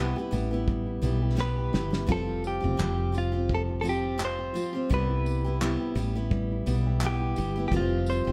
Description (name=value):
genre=acoustic pop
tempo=85 BPM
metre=4/4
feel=swing 55% on 16ths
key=C major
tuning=A4 = 440 Hz
part: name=direct-recorded clean electric guitar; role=melody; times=0.0-8.3 s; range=F4 to C5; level=-34 LUFS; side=equal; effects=plate reverb
part: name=mellow reed electric piano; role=accompaniment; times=0.0-8.3 s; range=G3 to C5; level=-41 LUFS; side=equal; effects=none
part: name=picked steel-string acoustic guitar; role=accompaniment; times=0.0-8.3 s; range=C3 to G4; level=-36 LUFS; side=equal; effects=none
part: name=flamenco guitar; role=arpeggios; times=0.0-8.3 s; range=F3 to G4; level=-39 LUFS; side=equal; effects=none
part: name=woody fretless electric bass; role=bass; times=0.0-8.3 s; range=F1 to C2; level=-31 LUFS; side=equal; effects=none
part: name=cloth-damped thuddy drum kit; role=drums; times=0.3-8.2 s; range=handclaps, kick drum, snare drum, tambourine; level=-35 LUFS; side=equal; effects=none
room=moderate studio reverb, RT60 0.8 s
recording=heard from further back in the room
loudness=-28 LUFS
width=mono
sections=0.0-8.3 A section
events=drum fill 1.4-2.1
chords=0.0 Cmaj7; 2.1 Fsus2; 4.9 Cmaj7; 7.7 Fsus2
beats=0.68 1.38 | 2.09 2.79 3.50 4.20 | 4.90 5.61 6.31 7.01 | 7.72